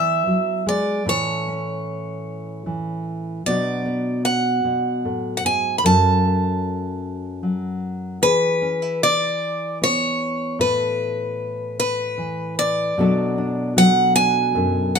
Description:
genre	folk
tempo	50 BPM (dotted quarters)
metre	6/8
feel	straight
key	B dorian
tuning	A4 = 440 Hz
part	picked steel-string acoustic guitar	melody	0.0-15.0 s	B4 to B5	-20 LUFS	right 1 dB	none
part	nylon-string guitar	accompaniment	0.0-15.0 s	F#2 to A4	-23 LUFS	left 1 dB	none
room	moderate studio reverb, RT60 0.7 s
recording	minimal, uncompressed stereo recording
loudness	-18 LUFS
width	side -6 dB against mid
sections	0.0-13.0 A section; 13.0-15.0 B section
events	none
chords	0.0 E; 1.1 A; 3.5 Bm; 5.8 F#m; 8.2 E; 10.6 Asus2; 13.0 Bm7

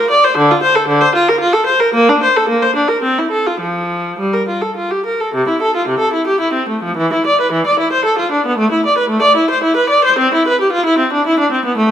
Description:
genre	classical, baroque-style suite movement for unaccompanied viola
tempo	101-117 BPM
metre	3/4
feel	rubato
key	F major, C major from 5.3 s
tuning	A4 = 439 Hz
part	warm viola	solo	0.0-11.9 s	C3 to D5	-11 LUFS	equal	none
room	moderate recital hall reverb, RT60 1.8 s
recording	none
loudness	-12 LUFS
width	side -10 dB against mid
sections	0.0-5.3 A section; 5.3-11.9 A section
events	none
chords	none

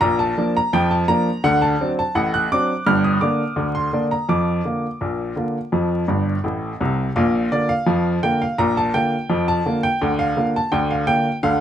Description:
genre	ragtime piano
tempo	84 BPM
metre	2/4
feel	straight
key	Bb major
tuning	A4 = 441 Hz
part	clear upright piano	solo	0.0-11.6 s	G1 to F#6	-17 LUFS	equal	none
room	moderate studio reverb, RT60 0.5 s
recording	dark, warm production, vinyl crackle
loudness	-17 LUFS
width	side -10 dB against mid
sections	0.0-7.2 A section; 7.2-11.6 B section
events	upright piano fill 6.1-7.2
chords	0.0 Bb; 1.4 D7; 2.9 Gm; 4.3 Bb/F; 5.7 F; 7.2 Bb; 10.0 Bb/D

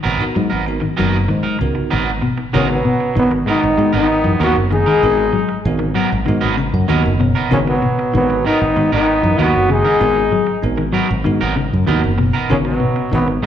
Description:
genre	afrobeat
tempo	96 BPM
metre	4/4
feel	straight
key	G# minor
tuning	A4 = 441 Hz
part	electric guitar at the edge of break-up	arpeggios	0.0-13.5 s	B2 to G#3	-21 LUFS	left 5 dB	slapback echo, tape echo
part	electric guitar at the edge of break-up	stabs	0.0-13.5 s	F#3 to A#4	-23 LUFS	right 7 dB	slapback echo
part	fingered electric bass	bass	0.1-13.4 s	F#1 to G#2	-18 LUFS	right 1 dB	none
part	bell-like tine electric piano	accompaniment	0.2-13.4 s	B3 to A#5	-24 LUFS	right 3 dB	phaser, slapback echo
part	growling trombone	melody	2.5-13.3 s	B3 to G#4	-17 LUFS	left 2 dB	slapback echo
part	bright trombone section	second line	2.6-13.5 s	B2 to G#3	-26 LUFS	right 1 dB	slapback echo
part	clear trumpet	second line	2.6-13.3 s	F#3 to D#4	-26 LUFS	right 2 dB	slapback echo
room	light reverb, studio reverb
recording	live gig heard through the venue's PA, club reverb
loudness	-14 LUFS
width	side -9 dB against mid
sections	0.0-2.5 A section; 2.5-13.5 B section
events	tine electric piano fill 6.3-7.5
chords	0.0 G#m9

